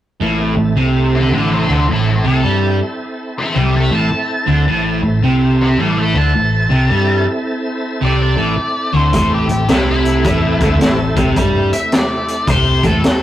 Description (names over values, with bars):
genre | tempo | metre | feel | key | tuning
blues rock power trio and southern rock | 108 BPM | 4/4 | swing 64% on 8ths | A minor | A4 = 436 Hz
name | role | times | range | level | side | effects
overdriven tonewheel organ | sustained chords | 0.2-13.2 s | A3 to C5 | -24 LUFS | right 1 dB | slow rotary speaker, chorus vibrato
distorted electric guitar | riff | 0.2-13.1 s | A2 to G3 | -16 LUFS | right 1 dB | distortion
overdriven picked electric bass | bass | 0.2-13.1 s | A1 to G2 | -17 LUFS | equal | none
octave-fuzz lead guitar | melody | 1.2-13.2 s | E4 to A5 | -20 LUFS | left 1 dB | wah, distortion, tape echo
raw garage drum kit | drums | 9.1-13.2 s | hi-hat, kick drum, snare drum | -16 LUFS | equal | none
room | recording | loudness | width
moderate studio reverb, RT60 0.6 s | rough rehearsal-room recording, warm saturation | -12 LUFS | side -12 dB against mid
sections
0.2-13.2 A section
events
none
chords
0.2 Am